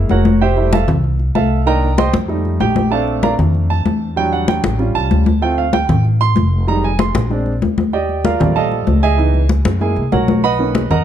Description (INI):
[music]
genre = Afro-Cuban jazz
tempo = 192 BPM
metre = 4/4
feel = straight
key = unclear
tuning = A4 = 438 Hz
[part]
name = warm baby grand piano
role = accompaniment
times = 0.0-11.0 s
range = Eb3 to C6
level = -18 LUFS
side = right 4 dB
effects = none
[part]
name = upright bass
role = bass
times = 0.0-11.0 s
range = F1 to Gb2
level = -17 LUFS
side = equal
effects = none
[part]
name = congas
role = percussion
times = 0.1-11.0 s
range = none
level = -18 LUFS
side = left 3 dB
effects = none
[sound]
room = moderate large studio reverb, RT60 1.0 s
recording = dark, warm production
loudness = -13 LUFS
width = side -10 dB against mid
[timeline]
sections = 0.0-2.9 A section; 2.9-11.0 A section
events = grand piano solo 0.0-11.0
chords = 0.4 Fmaj9; 1.7 Cm7; 2.3 F7; 2.9 Bbmaj7; 4.2 Em7; 4.8 A7alt; 5.4 Dm7; 6.7 Fm9; 7.3 Bb9; 7.9 Ebmaj9#11; 9.2 Dbm9; 9.8 Gb7; 10.4 Bmaj9